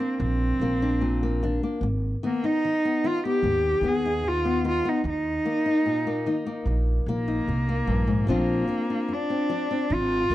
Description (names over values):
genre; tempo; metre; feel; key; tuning
acoustic folk-pop ballad; 74 BPM; 4/4; straight; unclear; A4 = 441 Hz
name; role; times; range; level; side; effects
warm cello; melody; 0.0-10.3 s; Bb3 to Ab4; -25 LUFS; right 1 dB; none
nylon-string guitar; accompaniment; 0.0-10.3 s; Eb2 to F4; -27 LUFS; left 3 dB; none
upright bass; bass; 0.2-10.3 s; Ab1 to Eb2; -27 LUFS; right 1 dB; none
room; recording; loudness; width
small room ambience; dry, close 1970s-style studio recording; -22 LUFS; side -14 dB against mid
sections
0.0-10.3 A section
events
none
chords
0.0 Eb5; 1.8 Abm; 5.0 Eb5; 8.3 Bbadd9